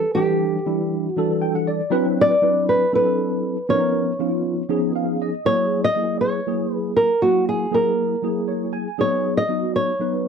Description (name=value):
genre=jazz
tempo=238 BPM (eighths)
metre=7/8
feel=straight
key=unclear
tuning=A4 = 440 Hz
part: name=flamenco guitar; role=melody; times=0.0-10.3 s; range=F#4 to D#5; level=-20 LUFS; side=equal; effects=slapback echo
part: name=bright tine electric piano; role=accompaniment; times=0.0-10.3 s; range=E3 to G#5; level=-22 LUFS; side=equal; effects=medium stereo tremolo, ensemble chorus
room=light reverb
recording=dry, close 1970s-style studio recording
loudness=-18 LUFS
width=side -6 dB against mid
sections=0.0-5.5 A section; 5.5-10.3 B section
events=tine electric piano fill 1.2-1.9, 4.7-5.5, 8.2-9.0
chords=0.0 Em7; 1.9 D13; 3.7 C#13; 5.5 F#9; 9.0 B6/F#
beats=| 0.15 0.41 0.66 0.91 1.17 1.42 1.67 | 1.92 2.18 2.43 2.68 2.94 3.19 3.44 | 3.69 3.95 4.20 4.45 4.70 4.96 5.21 | 5.46 5.71 5.97 6.22 6.47 6.72 6.98 | 7.23 7.48 7.74 7.99 8.24 8.49 8.74 | 9.00 9.25 9.50 9.76 10.01 10.26